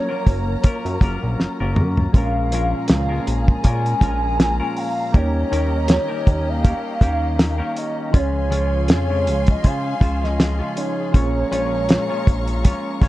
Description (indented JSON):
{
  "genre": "indie pop, bedroom pop",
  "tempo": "80 BPM",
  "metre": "4/4",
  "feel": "swing 55% on 16ths",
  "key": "Bb minor",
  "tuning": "A4 = 439 Hz",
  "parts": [
    { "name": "hollow clarinet-like synth lead", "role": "melody", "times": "0.0-13.1 s", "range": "Db5 to Ab5", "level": "-25 LUFS", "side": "equal", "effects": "lush chorus, tape echo" },
    { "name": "semi-hollow electric guitar", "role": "accompaniment", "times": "0.0-13.1 s", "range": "Bb2 to Db5", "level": "-27 LUFS", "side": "left 3 dB", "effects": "lush chorus, vibrato effect" },
    { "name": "soft electric-piano-like synth keys", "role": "accompaniment", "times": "0.0-13.1 s", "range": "F3 to Bb4", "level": "-30 LUFS", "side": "right 4 dB", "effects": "chorus, tremolo, cassette tape" },
    { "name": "warm studio string section", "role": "sustained chords", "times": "0.0-13.1 s", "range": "G4 to Db6", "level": "-33 LUFS", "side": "left 1 dB", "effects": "none" },
    { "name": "chorused synth bass", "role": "bass", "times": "0.3-13.1 s", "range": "Gb1 to Db3", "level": "-22 LUFS", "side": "equal", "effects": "none" },
    { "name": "cloth-damped thuddy drum kit", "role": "drums", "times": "0.3-13.1 s", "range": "hi-hat, kick drum, snare drum, toms", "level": "-15 LUFS", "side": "equal", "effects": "vintage 12-bit sampler grit" }
  ],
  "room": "studio reverb",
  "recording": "dark, warm production",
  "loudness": "-17 LUFS",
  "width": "side -16 dB against mid",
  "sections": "0.0-13.1 A section",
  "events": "drum fill 1.4-2.1",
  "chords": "0.0 Gbmaj7; 2.1 Bbm7; 5.1 Eb7; 8.1 Dbmaj7; 11.1 Bbm7",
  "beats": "0.64 1.39 | 2.14 2.89 3.64 4.39 | 5.14 5.89 6.64 7.39 | 8.14 8.89 9.64 10.39 | 11.14 11.89 12.64"
}